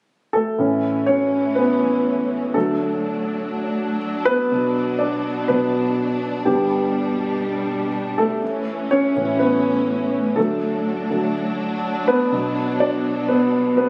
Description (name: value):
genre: pop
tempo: 123 BPM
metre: 4/4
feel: swing 56% on 16ths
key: unclear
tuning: A4 = 440 Hz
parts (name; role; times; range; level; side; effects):
- warm concert grand piano; accompaniment; 0.3-13.9 s; G2 to D5; -22 LUFS; equal; none
- warm studio string section; sustained chords; 0.6-13.9 s; A2 to D4; -28 LUFS; equal; none
room: moderate plate reverb, RT60 3.3 s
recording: recorded on a phone in the room, studio ambience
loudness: -21 LUFS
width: mono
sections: 0.6-13.9 A section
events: grand piano solo 0.6-13.9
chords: 0.0 N.C.; 0.6 A; 2.6 D; 4.5 Bm; 6.5 G; 8.4 A; 10.4 D; 12.3 Bm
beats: 0.10 | 0.59 1.08 1.57 2.06 | 2.55 3.04 3.53 4.02 | 4.51 5.00 5.49 5.97 | 6.46 6.95 7.44 7.93 | 8.42 8.91 9.39 9.88 | 10.37 10.86 11.35 11.84 | 12.32 12.81 13.30 13.79